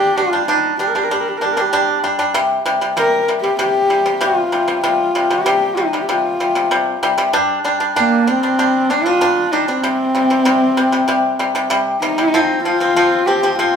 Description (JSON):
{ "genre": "mongolian traditional, Mongolian folk", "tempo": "96 BPM", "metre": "4/4", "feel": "straight", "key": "C minor", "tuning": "A4 = 441 Hz", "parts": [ { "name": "rich horsehead fiddle", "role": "melody", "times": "0.0-13.8 s", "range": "Bb3 to Bb4", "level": "-16 LUFS", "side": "left 1 dB", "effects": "none" }, { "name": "pipa", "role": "arpeggios", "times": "0.0-13.8 s", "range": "C3 to D4", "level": "-16 LUFS", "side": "equal", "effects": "none" } ], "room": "moderate large studio reverb, RT60 1.0 s", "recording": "band playing live in one room", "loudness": "-14 LUFS", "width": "side -7 dB against mid", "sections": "0.0-12.3 A section; 12.3-13.8 B section", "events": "none", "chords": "0.0 G5; 2.3 C5; 7.3 G5; 9.8 C5; 12.3 F5" }